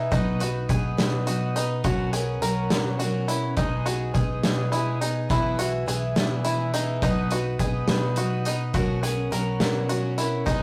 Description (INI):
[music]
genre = indie folk with a building arrangement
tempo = 70 BPM (dotted quarters)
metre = 6/8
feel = straight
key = B major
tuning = A4 = 440 Hz
[part]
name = picked twelve-string acoustic guitar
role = accompaniment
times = 0.0-10.6 s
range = B2 to B4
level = -32 LUFS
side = equal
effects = none
[part]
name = mellow tonewheel organ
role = sustained chords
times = 0.0-10.6 s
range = A#4 to E6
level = -37 LUFS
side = equal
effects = slow rotary speaker
[part]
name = bluegrass banjo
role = arpeggios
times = 0.0-10.6 s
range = D#4 to A#4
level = -32 LUFS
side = equal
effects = none
[part]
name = fingered electric bass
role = bass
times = 0.0-10.6 s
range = B1 to B2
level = -31 LUFS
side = equal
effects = none
[part]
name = loose indie drum kit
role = drums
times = 0.1-10.6 s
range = hi-hat, kick drum, snare drum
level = -29 LUFS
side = equal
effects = none
[sound]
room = moderate studio reverb, RT60 0.6 s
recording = rough rehearsal-room recording, warm saturation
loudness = -25 LUFS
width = mono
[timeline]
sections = 0.0-10.6 A section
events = none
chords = 0.1 B; 1.8 F#/B; 3.6 G#m/B; 7.0 B; 8.7 F#/B